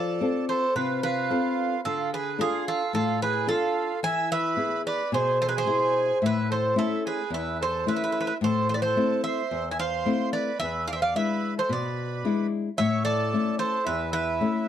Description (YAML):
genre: greek folk, Greek bouzouki band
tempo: 110 BPM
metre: 4/4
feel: straight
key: unclear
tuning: A4 = 439 Hz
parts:
  - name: Greek bouzouki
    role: melody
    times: 0.0-14.7 s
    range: G#4 to G#5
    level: -27 LUFS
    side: right 1 dB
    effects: none
  - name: accordion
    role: second line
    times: 0.0-14.7 s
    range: E4 to E5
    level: -31 LUFS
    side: right 6 dB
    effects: none
  - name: nylon-string guitar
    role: accompaniment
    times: 0.0-14.7 s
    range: E2 to A4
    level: -28 LUFS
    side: left 4 dB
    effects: none
room: moderate small room ambience, RT60 0.5 s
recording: dark, warm production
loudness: -24 LUFS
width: side -10 dB against mid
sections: 0.0-14.7 A section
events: none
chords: 0.0 F; 1.8 Dm; 4.0 E; 6.2 A; 8.4 Am; 10.6 E7; 12.8 A